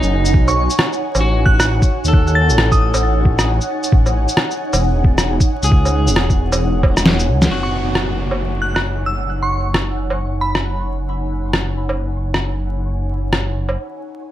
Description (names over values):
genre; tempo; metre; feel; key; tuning
future garage; 134 BPM; 4/4; swing 61% on 16ths; F# dorian; A4 = 441 Hz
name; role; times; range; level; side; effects
electric guitar at the edge of break-up; accompaniment; 0.0-8.8 s; D#4 to A4; -25 LUFS; left 1 dB; sidechain pumping, digital delay
ethereal airy pad; sustained chords; 0.0-13.8 s; D#4 to G#5; -24 LUFS; right 1 dB; ensemble chorus, built-in reverb, vintage 12-bit sampler grit, sidechain pumping
swelling detuned saw bass; bass; 0.0-13.8 s; E1 to D#2; -18 LUFS; equal; sidechain pumping
electronic shaker, woodblock, rim click and snare drum; drums; 0.0-13.8 s; none; -18 LUFS; equal; none
electronic kick drum; drums; 0.3-6.9 s; none; -14 LUFS; equal; none
glassy synth bell; melody; 0.5-3.2, 7.6-10.8 s; B5 to A6; -23 LUFS; equal; chorus, tremolo, dub echo
downlifter; sound effects; 7.5-11.1 s; none; -28 LUFS; equal; none
room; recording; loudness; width
light reverb, digital ambience; vinyl crackle; -14 LUFS; side -13 dB against mid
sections
0.0-7.5 A section; 7.5-14.3 B section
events
drum fill 7.1-7.5; break 13.8-14.3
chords
0.3 Badd9; 3.9 A; 7.5 F#sus2